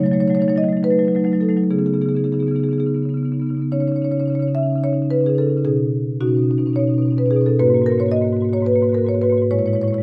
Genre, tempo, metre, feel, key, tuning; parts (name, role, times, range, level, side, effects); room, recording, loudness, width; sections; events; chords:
classical, contemporary piece for solo marimba; 217 BPM (eighths); 7/8; rubato; A4 = 440 Hz
marimba with medium mallets; solo; 0.0-10.0 s; G#2 to E5; -18 LUFS; equal
light reverb; close, detailed microphones; -19 LUFS; mono
0.0-3.7 A section; 3.7-10.0 A section
0.0 F#m6; 1.7 C#sus2; 5.7 Badd9; 7.6 G#sus2; 9.5 Amaj7